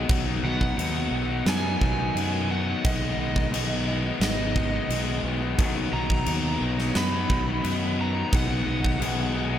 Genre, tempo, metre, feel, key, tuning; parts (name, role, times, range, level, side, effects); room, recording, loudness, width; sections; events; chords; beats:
post-rock; 88 BPM; 4/4; straight; B major; A4 = 441 Hz
ethereal airy pad; sustained chords; 0.0-9.6 s; B3 to F#5; -40 LUFS; right 3 dB
crunchy overdriven guitar; riff; 0.0-9.6 s; B2 to D#4; -28 LUFS; left 4 dB
growling fingered electric bass; bass; 0.0-9.6 s; G#1 to F#2; -29 LUFS; right 1 dB; overdrive
huge arena drum kit; drums; 0.1-9.2 s; crash cymbal, kick drum, snare drum; -27 LUFS; right 1 dB
overdriven slide guitar; melody; 0.4-9.6 s; D#5 to B5; -32 LUFS; right 4 dB; analog delay
moderate lush hall reverb, RT60 1.7 s, small room ambience; big arena sound; -23 LUFS; side -10 dB against mid
0.0-9.6 A section
0.1 Bmaj7; 2.8 G#m7/B; 5.6 Bmaj7; 8.3 G#m7/B
| 0.10 0.78 1.47 2.15 | 2.84 3.52 4.21 4.90 | 5.58 6.27 6.95 7.64 | 8.33 9.01